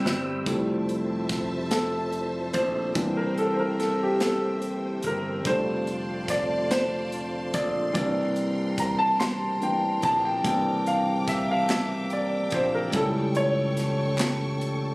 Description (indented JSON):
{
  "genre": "slow gospel",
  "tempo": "48 BPM (dotted quarters)",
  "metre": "6/8",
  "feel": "straight",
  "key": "F major",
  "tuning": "A4 = 441 Hz",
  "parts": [
    { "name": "warm concert grand piano", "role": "accompaniment", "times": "0.0-14.9 s", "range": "E3 to C6", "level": "-26 LUFS", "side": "equal", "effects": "none" },
    { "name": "tonewheel organ", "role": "sustained chords", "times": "0.0-14.9 s", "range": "D3 to E6", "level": "-34 LUFS", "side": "equal", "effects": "slow rotary speaker" },
    { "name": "slap bass", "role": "bass", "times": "0.0-14.9 s", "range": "F1 to C#2", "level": "-30 LUFS", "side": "equal", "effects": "none" },
    { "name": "crisp fusion drum kit", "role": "drums", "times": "0.1-14.8 s", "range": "hi-hat, kick drum, snare drum", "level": "-30 LUFS", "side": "equal", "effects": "none" },
    { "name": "bright studio string section", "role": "sustained chords", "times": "0.4-14.9 s", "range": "C5 to D6", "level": "-38 LUFS", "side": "equal", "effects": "none" },
    { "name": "group handclap", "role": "percussion", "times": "11.7-14.6 s", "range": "none", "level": "-35 LUFS", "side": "equal", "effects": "none" }
  ],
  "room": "light reverb, studio reverb",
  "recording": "recorded on a phone in the room",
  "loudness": "-23 LUFS",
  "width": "side -24 dB against mid",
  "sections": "0.5-14.9 A section",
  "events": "drum fill 0.0-0.5; grand piano solo 0.5-14.9",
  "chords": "0.5 Fmaj7; 3.0 C7; 5.5 F6; 8.0 C7; 12.9 A7/C#",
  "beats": "| 0.46 1.71 | 2.96 4.21 | 5.45 6.70 | 7.95 9.20 | 10.45 11.70 | 12.95 14.19"
}